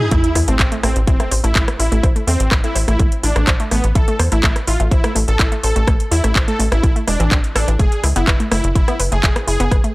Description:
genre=melodic techno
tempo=125 BPM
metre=4/4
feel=straight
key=A harmonic minor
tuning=A4 = 440 Hz
part: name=soft supersaw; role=melody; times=0.0-9.8 s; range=B3 to A4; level=-23 LUFS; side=equal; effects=sidechain pumping, tape echo
part: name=house drum kit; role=drums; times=0.0-9.9 s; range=handclaps, hi-hat, rim click, toms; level=-21 LUFS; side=equal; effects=none
part: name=riser and sub drop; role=sound effects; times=0.0-2.0 s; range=none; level=-24 LUFS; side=right 1 dB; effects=none
part: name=wide unison pluck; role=arpeggios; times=0.1-9.9 s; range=E3 to C5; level=-24 LUFS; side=equal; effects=vintage 12-bit sampler grit, sidechain pumping, tape echo
part: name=tight sequencer bass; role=bass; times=0.1-9.8 s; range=E1 to E2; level=-17 LUFS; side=equal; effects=sidechain pumping, high-pass filter
part: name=electronic kick drum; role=drums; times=0.1-9.8 s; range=none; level=-16 LUFS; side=equal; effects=none
room=digital ambience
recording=dry, gritty hardware recording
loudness=-14 LUFS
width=side -20 dB against mid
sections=0.1-9.9 A section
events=drop 0.1-9.9; impact 0.1-2.0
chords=0.1 A5; 7.8 F#m

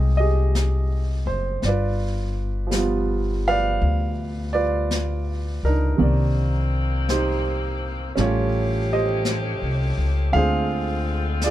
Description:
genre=jazz ballad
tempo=55 BPM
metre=4/4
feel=swing 66% on 8ths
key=unclear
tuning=A4 = 441 Hz
part: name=warm baby grand piano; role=accompaniment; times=0.0-11.5 s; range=C3 to G5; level=-24 LUFS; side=right 3 dB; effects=none
part: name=upright bass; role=bass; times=0.0-11.5 s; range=F#1 to D2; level=-22 LUFS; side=left 1 dB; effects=none
part: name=jazz brush drum kit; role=drums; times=0.5-11.5 s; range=brushed snare drum, hi-hat, snare drum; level=-32 LUFS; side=left 3 dB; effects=none
part: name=bright saxophone section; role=sustained chords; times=6.0-11.5 s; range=D3 to G4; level=-31 LUFS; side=left 4 dB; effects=none
room=little or no reverb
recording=none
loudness=-20 LUFS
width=side -13 dB against mid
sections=0.0-11.5 A section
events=none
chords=0.0 Fm9; 1.6 G7; 6.0 Cm9; 8.2 A7alt; 10.3 Dm7b5

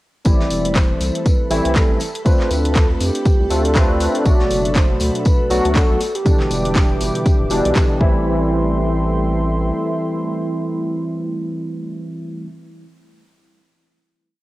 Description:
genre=deep house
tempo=120 BPM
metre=4/4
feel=swing 58% on 16ths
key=A minor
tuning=A4 = 440 Hz
part: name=barky tine electric piano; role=stabs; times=0.2-12.5 s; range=B2 to B4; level=-21 LUFS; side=equal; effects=analog chorus, sidechain pumping, cassette tape
part: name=mellow horn-like synth lead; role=melody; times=0.3-12.5 s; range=E4 to D5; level=-25 LUFS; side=equal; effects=wide subtle chorus, cassette tape
part: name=round analog bass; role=bass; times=0.3-9.7 s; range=D1 to F2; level=-22 LUFS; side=equal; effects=sidechain pumping
part: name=electronic kick drum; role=drums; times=0.3-8.1 s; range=none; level=-15 LUFS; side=equal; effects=overdrive, small room ambience, cassette tape
part: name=house drum kit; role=drums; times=0.3-7.9 s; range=handclaps, hi-hat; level=-27 LUFS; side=left 1 dB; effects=overdrive, small room ambience, cassette tape
part: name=tambourine and snare drum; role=drums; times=0.3-7.9 s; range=none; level=-32 LUFS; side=equal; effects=high-pass filter on snare, small room ambience, cassette tape, high-pass filter on perc, high-pass filter on room
part: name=string machine, violins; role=texture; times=0.3-8.3 s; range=A4 to B5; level=-37 LUFS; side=equal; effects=none
part: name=dark analog pad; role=sustained chords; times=4.3-12.5 s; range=A4 to D6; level=-28 LUFS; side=right 1 dB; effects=chorus, sidechain pumping, cassette tape
room=digital ambience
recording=home recording on cassette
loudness=-15 LUFS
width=side -17 dB against mid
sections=0.3-8.3 groove; 8.3-12.3 final hit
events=none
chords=0.3 Am7; 2.0 Dm7; 4.3 Bm7; 6.0 Em7; 8.0 Am7

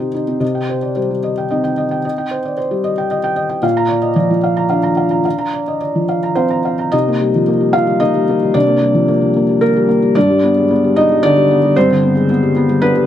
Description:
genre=neoclassical minimalist piano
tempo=112 BPM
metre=3/4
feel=rubato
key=C minor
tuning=A4 = 435 Hz
part: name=felt-muted upright piano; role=solo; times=0.0-13.1 s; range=G2 to Bb5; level=-12 LUFS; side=equal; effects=none
room=light reverb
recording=none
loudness=-12 LUFS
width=side -10 dB against mid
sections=0.4-6.9 A section; 6.9-13.1 B section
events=none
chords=0.4 Cm; 3.6 Bb; 6.9 Cm7; 10.2 G

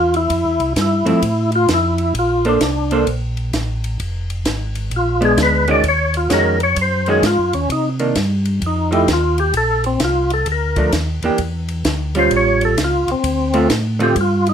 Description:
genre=soul jazz organ trio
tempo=130 BPM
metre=4/4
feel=swing 65% on 8ths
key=Bb major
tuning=A4 = 442 Hz
part: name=percussive tonewheel organ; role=melody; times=0.0-14.5 s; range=C4 to D5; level=-17 LUFS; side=left 1 dB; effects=slow rotary speaker, overdrive, chorus vibrato
part: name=mellow tonewheel organ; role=bass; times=0.0-14.5 s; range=F1 to C3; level=-20 LUFS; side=equal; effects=overdrive, chorus vibrato, slow rotary speaker
part: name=compact cocktail drum kit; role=drums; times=0.1-14.5 s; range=hi-hat, kick drum, ride cymbal, snare drum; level=-24 LUFS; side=equal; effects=none
part: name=vintage hollow-body jazz guitar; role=accompaniment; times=1.1-14.1 s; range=D3 to C5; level=-17 LUFS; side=right 2 dB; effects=none
room=moderate studio ambience, RT60 0.5 s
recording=minimal, uncompressed stereo recording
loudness=-15 LUFS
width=side -8 dB against mid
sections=0.0-2.1 A section; 2.1-14.5 A section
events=tonewheel organ solo 0.0-14.5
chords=0.0 Fmaj7; 2.1 Bbmaj9; 4.0 Fm; 4.9 Bb7b9; 5.8 Ebm11; 7.7 Cm9; 8.6 F9; 9.5 Bbmaj7; 11.4 Dm11; 12.3 Aaug7; 13.2 Dm7

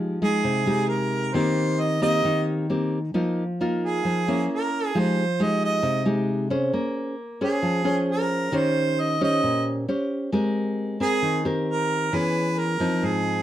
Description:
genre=bossa nova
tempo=134 BPM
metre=4/4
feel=straight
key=unclear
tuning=A4 = 443 Hz
part: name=nylon-string guitar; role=accompaniment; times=0.0-13.4 s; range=Ab2 to C5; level=-23 LUFS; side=left 1 dB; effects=none
part: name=warm harmonica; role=melody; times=0.2-13.4 s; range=Ab4 to Eb5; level=-25 LUFS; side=right 3 dB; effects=slapback echo
room=light reverb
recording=dry, close 1970s-style studio recording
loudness=-21 LUFS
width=side -12 dB against mid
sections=0.0-13.4 A section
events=none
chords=0.0 Fm9; 1.3 Eb6; 3.1 Db69/F; 4.5 Bbdim; 4.9 Fm9; 6.7 Bbm9; 8.5 Eb6; 9.9 C5; 10.3 Abmaj9; 12.1 E6

